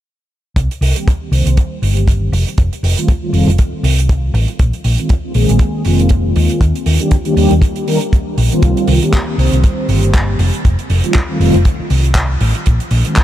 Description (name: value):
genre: nu-disco, nu disco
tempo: 119 BPM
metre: 4/4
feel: swing 56% on 16ths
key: C minor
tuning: A4 = 440 Hz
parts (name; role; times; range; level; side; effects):
- hollow-body short-scale fingered electric bass; bass; 0.6-13.0 s; F1 to Eb2; -13 LUFS; equal; none
- damped 70s drum kit; drums; 0.6-13.2 s; handclaps, hi-hat; -23 LUFS; right 3 dB; none
- kick drum; drums; 0.6-13.2 s; none; -12 LUFS; equal; none
- mellow synth brass; accompaniment; 1.0-13.2 s; Eb3 to C5; -17 LUFS; equal; chorus, sidechain pumping, analog delay
room: light reverb, small room reverb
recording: none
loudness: -11 LUFS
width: side -12 dB against mid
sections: 0.6-13.2 A section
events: filter sweep on analog polysynth 0.6-13.2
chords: 0.6 Cm7; 2.3 F9; 4.6 Bb9sus4; 6.6 Ebmaj7; 8.6 Cm7; 10.4 F9; 12.7 Bb9sus4